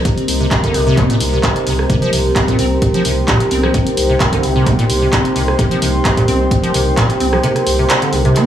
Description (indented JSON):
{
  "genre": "acid house",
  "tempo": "130 BPM",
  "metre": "4/4",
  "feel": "swing 54% on 16ths",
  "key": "C minor",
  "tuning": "A4 = 440 Hz",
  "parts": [
    { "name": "dark analog pad", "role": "sustained chords", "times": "0.0-8.5 s", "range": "C4 to G5", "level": "-18 LUFS", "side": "equal", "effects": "chorus, phaser, sidechain pumping" },
    { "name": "acid bass, square", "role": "riff", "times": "0.0-8.5 s", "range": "Bb2 to C4", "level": "-18 LUFS", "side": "equal", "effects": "tube saturation, wide subtle chorus, diffuse ambient delay" },
    { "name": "warbly tape-like pad", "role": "texture", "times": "0.0-8.5 s", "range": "Eb4 to C6", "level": "-23 LUFS", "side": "right 1 dB", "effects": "chorus, built-in reverb, sidechain pumping" },
    { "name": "electronic kick drum", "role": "drums", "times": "0.1-7.1 s", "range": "none", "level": "-17 LUFS", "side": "equal", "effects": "none" },
    { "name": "punchy analog drum machine", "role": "drums", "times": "0.1-8.5 s", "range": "handclaps, hi-hat, rim click", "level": "-20 LUFS", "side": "right 1 dB", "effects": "none" },
    { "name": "saturated sub bass", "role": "bass", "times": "0.3-8.3 s", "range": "C2", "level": "-18 LUFS", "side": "equal", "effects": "sidechain pumping" }
  ],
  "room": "wet plate reverb, RT60 1.1 s, digital ambience",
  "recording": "dreamy mix soaked in reverb, small room ambience",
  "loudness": "-12 LUFS",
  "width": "side -10 dB against mid",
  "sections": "0.0-8.5 A section",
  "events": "fade-in on ambient pad 0.0-8.5; kick drops out 7.4-8.5",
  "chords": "0.0 Cm7"
}